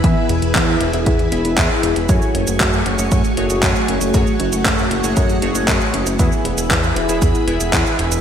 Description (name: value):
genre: italo disco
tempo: 117 BPM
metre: 4/4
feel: straight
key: F# minor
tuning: A4 = 439 Hz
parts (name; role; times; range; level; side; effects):
- string machine, full ensemble; sustained chords; 0.0-8.2 s; A3 to C#6; -22 LUFS; equal; ensemble chorus
- chorused polysynth; stabs; 0.0-8.2 s; E3 to E5; -22 LUFS; left 1 dB; phaser, ping-pong delay
- fat analog bass; bass; 0.0-8.2 s; E1 to F#2; -21 LUFS; equal; none
- electronic kick drum; drums; 0.0-7.8 s; none; -19 LUFS; equal; none
- gated 80s digital drum machine; drums; 0.0-8.2 s; cabasa, handclaps, hi-hat; -21 LUFS; equal; gated reverb, overdrive
room: moderate lush hall reverb, RT60 2.5 s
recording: bright 1980s-style digital production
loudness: -14 LUFS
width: side -8 dB against mid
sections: 0.0-8.2 A section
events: none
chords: 0.0 E; 2.1 F#madd9; 6.2 E